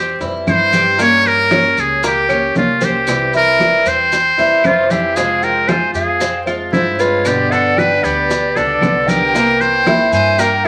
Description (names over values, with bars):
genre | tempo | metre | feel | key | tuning
latin, Cuban son and guajira | 115 BPM | 4/4 | straight | unclear | A4 = 441 Hz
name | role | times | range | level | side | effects
trumpet with metal mute | melody | 0.0-10.7 s | E4 to Db5 | -16 LUFS | equal | none
Cuban tres | arpeggios | 0.0-10.7 s | Bb3 to C5 | -21 LUFS | equal | none
upright bass | bass | 0.0-10.7 s | C2 to G2 | -29 LUFS | equal | none
fingerpicked steel-string acoustic guitar | accompaniment | 0.2-10.7 s | B2 to G4 | -24 LUFS | equal | none
bongos | percussion | 0.2-10.7 s | none | -27 LUFS | equal | none
congas | percussion | 0.2-10.7 s | none | -26 LUFS | equal | none
maracas | percussion | 0.2-10.7 s | none | -33 LUFS | equal | none
claves | percussion | 0.5-10.7 s | none | -30 LUFS | equal | none
breathy bright silver concert flute | second line | 4.6-10.7 s | C5 to Ab5 | -24 LUFS | equal | none
room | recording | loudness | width
moderate club reverb, RT60 0.7 s | vinyl crackle | -14 LUFS | mono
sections
0.0-10.7 A section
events
none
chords
0.0 C; 1.0 Gdim; 3.1 C; 5.2 Fm; 7.3 G; 9.3 C7